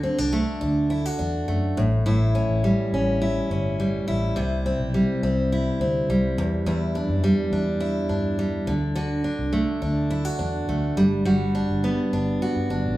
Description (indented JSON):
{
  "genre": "acoustic pop",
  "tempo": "104 BPM",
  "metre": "4/4",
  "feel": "straight",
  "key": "unclear",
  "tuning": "A4 = 440 Hz",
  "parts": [
    { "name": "picked steel-string acoustic guitar", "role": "accompaniment", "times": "0.0-13.0 s", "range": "E2 to F#4", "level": "-22 LUFS", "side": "equal", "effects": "none" },
    { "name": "vintage muted fingered electric bass", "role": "bass", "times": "0.0-13.0 s", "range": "G1 to G2", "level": "-27 LUFS", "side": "equal", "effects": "none" }
  ],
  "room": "wet large studio reverb, RT60 0.9 s",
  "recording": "band playing live in one room",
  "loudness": "-21 LUFS",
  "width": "side -16 dB against mid",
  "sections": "0.0-13.0 A section",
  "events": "none",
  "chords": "0.0 D; 1.8 A7; 4.4 C; 6.4 Em7; 8.7 D; 11.0 Gmaj7"
}